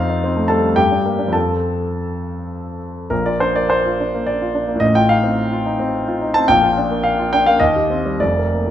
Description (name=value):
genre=classical, romantic character piece for solo piano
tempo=96-118 BPM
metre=3/4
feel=rubato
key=Bb major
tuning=A4 = 440 Hz
part: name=warm grand piano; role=solo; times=0.0-8.7 s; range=F1 to A5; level=-15 LUFS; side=equal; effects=none
room=wet recital hall reverb, RT60 1.5 s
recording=none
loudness=-15 LUFS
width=side -11 dB against mid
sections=0.0-3.1 A section; 3.1-8.7 B section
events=none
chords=0.0 F7; 0.8 Gm; 1.3 F; 3.1 Bb; 4.8 F7/A; 6.5 Bb; 7.6 Cm/Eb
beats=0.23 0.77 | 1.35 1.94 2.52 | 3.11 3.71 4.28 | 4.82 5.39 5.93 | 6.47 7.03 7.61 | 8.21